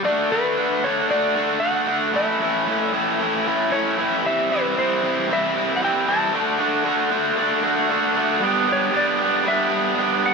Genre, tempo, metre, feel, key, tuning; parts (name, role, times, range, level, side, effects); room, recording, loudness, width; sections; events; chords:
rock; 115 BPM; 4/4; straight; A4 = 440 Hz
clean lap steel guitar; melody; 0.0-10.3 s; B4 to A5; -24 LUFS; left 1 dB
raw garage guitar; riff; 0.0-10.3 s; A2 to G4; -19 LUFS; right 1 dB; overdrive, spring reverb
light reverb, digital ambience; -18 LUFS; side -4 dB against mid
0.1-8.4 A section; 8.4-10.3 B section
0.1 D; 2.2 A; 4.2 C; 6.3 D; 8.4 G